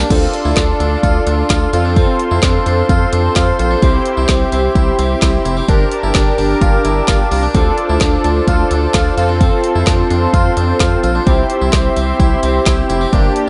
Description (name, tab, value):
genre	synth-pop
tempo	129 BPM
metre	4/4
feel	straight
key	D minor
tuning	A4 = 440 Hz
part	analog synth brass	accompaniment	0.0-13.5 s	Bb3 to Bb4	-21 LUFS	equal	chorus
part	warm analog pad	sustained chords	0.0-13.5 s	F4 to D6	-21 LUFS	equal	chorus
part	harpsichord	arpeggios	0.0-13.3 s	C4 to F4	-25 LUFS	equal	tape echo
part	rubbery square bass	bass	0.0-13.3 s	F1 to F2	-19 LUFS	equal	none
part	deep house drum kit	drums	0.1-13.5 s	crash cymbal, handclaps, hi-hat, kick drum, snare drum	-17 LUFS	equal	none
room	digital ambience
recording	nothing above 10.9 kHz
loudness	-14 LUFS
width	mono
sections	0.1-13.5 A section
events	none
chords	0.1 Dm7; 1.7 F; 3.8 C; 5.7 Gmadd9; 7.5 Dm7; 9.2 F; 11.3 C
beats	| 0.10 0.57 1.03 1.50 | 1.97 2.43 2.90 3.36 | 3.83 4.29 4.76 5.22 | 5.69 6.15 6.62 7.08 | 7.55 8.01 8.48 8.94 | 9.41 9.87 10.34 10.80 | 11.27 11.73 12.20 12.66 | 13.13